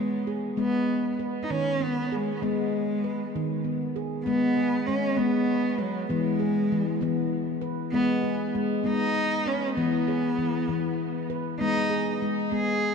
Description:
world meditative, meditative tuned percussion; 65 BPM (dotted quarters); 6/8; straight; G# minor; A4 = 440 Hz
rich cello; melody; 0.0-12.9 s; F#3 to G#4; -28 LUFS; right 1 dB; shimmer reverb, diffuse ambient delay
handpan; arpeggios; 0.0-12.9 s; D#3 to B4; -27 LUFS; left 2 dB
wet echo chamber reverb, RT60 2.1 s; dark, warm production; -24 LUFS; side -5 dB against mid
0.0-4.3 A section; 4.3-12.9 B section
0.0 E (rootless); 0.6 G#m; 6.1 E; 7.9 G#m; 9.8 E; 11.6 G#m

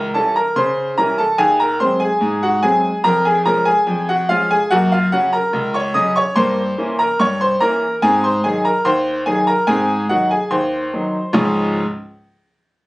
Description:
ragtime piano; 72 BPM; 2/4; straight; Db major; A4 = 440 Hz
bright grand piano; solo; 0.0-11.8 s; Db2 to Eb6; -14 LUFS; equal
light reverb; recorded on a phone in the room, studio ambience; -14 LUFS; side -21 dB against mid
0.0-11.4 A section; 11.4-12.9 B section
0.0 Dbdim7; 1.4 Ab7/Eb; 3.0 Db/F; 4.7 Gb; 6.4 Gdim7; 8.0 Ab7; 11.4 Db

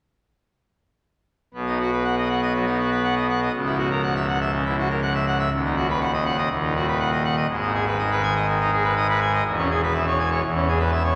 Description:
classical, organ toccata; 122 BPM; 4/4; straight; B major; A4 = 439 Hz
pipe organ, full organ; solo; 1.5-11.2 s; C#1 to G#5; -22 LUFS; equal
wet cathedral reverb, RT60 5.5 s; -22 LUFS; mono
1.5-11.2 A section
1.5 B; 3.5 F#7/C#; 5.5 B/D#; 7.5 G#m; 9.4 C#m7/E

